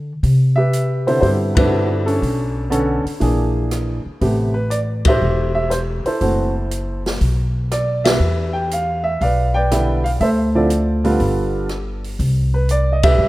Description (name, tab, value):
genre	jazz piano trio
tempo	120 BPM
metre	4/4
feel	swing 69% on 8ths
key	C major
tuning	A4 = 440 Hz
part	upright bass	bass	0.0-13.3 s	E1 to D3	-19 LUFS	equal	none
part	open jazz drum kit	drums	0.2-13.1 s	hi-hat, kick drum, ride cymbal, rim click, snare drum	-22 LUFS	left 1 dB	none
part	clear upright piano	melody	0.6-13.3 s	C3 to G5	-19 LUFS	right 1 dB	none
room	light reverb, small room ambience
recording	rough home demo mix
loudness	-16 LUFS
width	side -17 dB against mid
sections	0.2-13.3 A section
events	band accent 1.5, 5.0, 8.0, 12.9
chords	0.2 Cmaj9; 2.2 Bm9; 3.2 Bb7#11; 4.2 Am9; 6.2 F#m7b5; 7.2 Bm; 8.2 Em7; 10.2 Dm9; 11.2 G7; 12.2 Cmaj9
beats	| 0.23 0.72 1.22 1.72 | 2.21 2.71 3.21 3.71 | 4.21 4.71 5.21 5.71 | 6.20 6.70 7.20 7.70 | 8.20 8.70 9.20 9.70 | 10.20 10.69 11.19 11.69 | 12.19 12.69 13.19